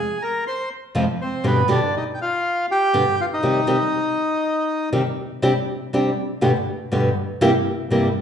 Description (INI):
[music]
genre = tango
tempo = 121 BPM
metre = 4/4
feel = rubato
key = C minor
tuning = A4 = 440 Hz
[part]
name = bandoneon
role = melody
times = 0.0-4.9 s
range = B3 to C6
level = -21 LUFS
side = equal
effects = none
[part]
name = nylon-string guitar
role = accompaniment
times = 0.9-8.1 s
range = F2 to G4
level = -19 LUFS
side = equal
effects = none
[sound]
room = wet large studio reverb, RT60 1.2 s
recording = heard from further back in the room, nothing above 10.9 kHz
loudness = -18 LUFS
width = side -8 dB against mid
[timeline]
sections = 0.0-5.4 A section; 5.4-8.2 B section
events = none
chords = 0.0 Fm; 1.4 G; 3.4 Cm; 5.4 Csus2; 6.4 G; 7.4 C7/G